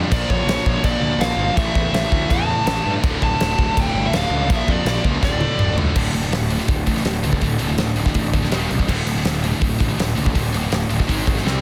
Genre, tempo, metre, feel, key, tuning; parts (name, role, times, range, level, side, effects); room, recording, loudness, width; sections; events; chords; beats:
heavy metal; 164 BPM; 4/4; straight; D minor; A4 = 445 Hz
distorted electric guitar; riff; 0.0-11.6 s; D2 to C4; -29 LUFS; equal; distortion
heavy high-gain guitar; riff; 0.0-11.6 s; D2 to C4; -31 LUFS; equal; distortion
scooped high-gain guitar; riff; 0.0-11.6 s; D2 to C4; -29 LUFS; equal; distortion
fuzz picked electric bass; bass; 0.0-11.6 s; D1 to G2; -26 LUFS; equal; overdrive
dark smooth lead guitar; melody; 0.1-5.7 s; C#5 to A5; -26 LUFS; equal; overdrive, tape echo
big rock drum kit; drums; 0.1-11.5 s; crash cymbal, hi-hat, kick drum, snare drum, toms; -23 LUFS; equal
little or no reverb; dense, heavily limited modern master; -19 LUFS; mono
0.0-6.0 A section; 6.0-11.6 B section
drum fill 5.2-6.0, 11.4
0.1 Bb; 1.6 A5; 3.0 Dm; 4.5 Bb; 5.2 D5; 8.5 Eb5; 8.9 D5; 11.1 G#5
| 0.11 0.47 0.84 1.21 | 1.57 1.94 2.30 2.67 | 3.03 3.40 3.76 4.13 | 4.49 4.86 5.22 5.59 | 5.95 6.32 6.68 7.05 | 7.42 7.78 8.15 8.51 | 8.88 9.24 9.61 9.98 | 10.34 10.71 11.07 11.44